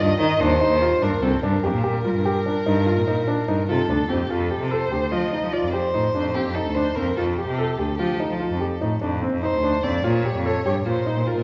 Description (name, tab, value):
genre	contemporary instrumental, chamber music in an uneven meter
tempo	146 BPM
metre	7/4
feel	straight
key	F mixolydian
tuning	A4 = 440 Hz
part	dark violin	melody	0.0-11.4 s	G4 to Eb5	-27 LUFS	equal	none
part	warm concert grand piano	arpeggios	0.0-11.4 s	C4 to A4	-27 LUFS	equal	none
part	rich cello	bass	0.0-11.4 s	C2 to G3	-26 LUFS	equal	none
room	wet recital hall reverb, RT60 1.7 s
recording	recorded in a church or concert hall, nothing above 7.5 kHz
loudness	-22 LUFS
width	mono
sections	0.0-4.3 A section; 4.3-11.4 B section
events	none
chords	0.0 Eb; 1.4 Gm; 4.3 Fadd9; 10.0 Bbm